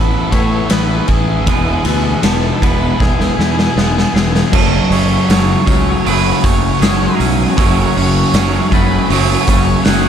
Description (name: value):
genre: rock, shoegaze and dream pop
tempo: 79 BPM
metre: 4/4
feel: straight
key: unclear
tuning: A4 = 440 Hz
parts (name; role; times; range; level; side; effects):
- octave-fuzz lead guitar; melody; 0.0-10.1 s; G#4 to F#5; -22 LUFS; right 4 dB; distortion, tape echo
- glassy FM pad; sustained chords; 0.0-10.1 s; B4 to E6; -25 LUFS; left 3 dB; ensemble chorus, built-in reverb
- twangy electric guitar; arpeggios; 0.0-10.1 s; F#3 to G#4; -26 LUFS; left 8 dB; lush chorus, tape echo
- thick fuzz guitar; riff; 0.0-10.1 s; E2 to A3; -20 LUFS; left 9 dB; distortion, lush chorus
- twangy electric guitar; riff; 0.0-10.1 s; E2 to A4; -20 LUFS; right 14 dB; reverse reverb
- fuzz fingered electric bass; bass; 0.0-10.1 s; E1 to A2; -17 LUFS; equal; overdrive
- raw garage drum kit; drums; 0.3-10.0 s; crash cymbal, hi-hat, kick drum, ride cymbal, snare drum; -16 LUFS; equal; none
- crunchy overdriven guitar; riff; 4.5-10.1 s; F#2 to F#3; -19 LUFS; right 1 dB; none
- tambourine; percussion; 5.3-10.1 s; none; -32 LUFS; right 8 dB; none
room: studio ambience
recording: dark, warm production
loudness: -11 LUFS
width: side -8 dB against mid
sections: 0.0-4.5 A section; 4.5-10.1 B section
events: drum fill 3.0-4.5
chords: 0.0 Asus2; 1.5 E; 4.5 F#madd9